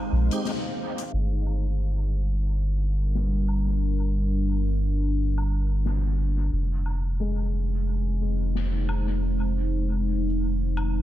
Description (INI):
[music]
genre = ambient dub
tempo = 89 BPM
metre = 4/4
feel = swing 59% on 16ths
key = unclear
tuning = A4 = 441 Hz
[part]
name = deep dark ambient pad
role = sustained chords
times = 0.0-11.0 s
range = G3 to F5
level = -31 LUFS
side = left 1 dB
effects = chorus, built-in reverb
[part]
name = felt-muted upright piano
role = arpeggios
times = 0.0-1.3, 7.2-11.0 s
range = Ab3 to Ab5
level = -38 LUFS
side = left 3 dB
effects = tape echo
[part]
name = soft dub sub bass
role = bass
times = 0.1-11.0 s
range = F1 to Bb1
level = -24 LUFS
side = equal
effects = none
[part]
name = tonewheel organ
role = stabs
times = 0.3-0.5 s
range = Ab3 to G4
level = -35 LUFS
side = right 2 dB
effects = chorus vibrato, slow rotary speaker, dub echo
[part]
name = soft-mallet drum kit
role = drums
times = 0.3-10.9 s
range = hi-hat, snare drum, woodblock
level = -38 LUFS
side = left 2 dB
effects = studio reverb, dub echo
[sound]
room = small room ambience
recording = low-pass filter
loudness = -23 LUFS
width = side -14 dB against mid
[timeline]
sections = 0.0-1.1 A section; 1.1-11.0 B section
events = band accent 0.5-0.8; filter sweep on ambient pad 1.1-11.0; filter sweep 1.1-11.0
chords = 0.0 Fm7; 1.1 Gm7; 6.5 Fm7